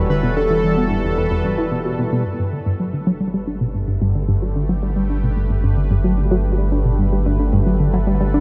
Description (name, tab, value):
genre	ambient, sequencer-driven space music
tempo	111 BPM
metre	4/4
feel	straight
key	G lydian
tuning	A4 = 440 Hz
part	pulse-width lead	melody	0.0-2.0 s	A4 to B4	-27 LUFS	equal	chorus, delay
part	sweeping resonant pad	sustained chords	0.0-8.4 s	D3 to B4	-28 LUFS	equal	chorus
part	tight sequenced synth	riff	0.0-8.4 s	E2 to D4	-22 LUFS	equal	chorus, delay
part	round analog bass	bass	0.0-8.4 s	E1 to G1	-24 LUFS	equal	none
part	bubbling stepped-filter texture	texture	0.0-8.4 s	A4 to C#6	-42 LUFS	equal	none
room	moderate huge ambient reverb, RT60 8.1 s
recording	dark, warm production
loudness	-19 LUFS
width	mono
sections	0.0-2.3 A section; 2.3-8.4 B section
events	fade-in on analog synth pad 2.3-8.4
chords	0.0 Emadd9; 2.3 Gadd9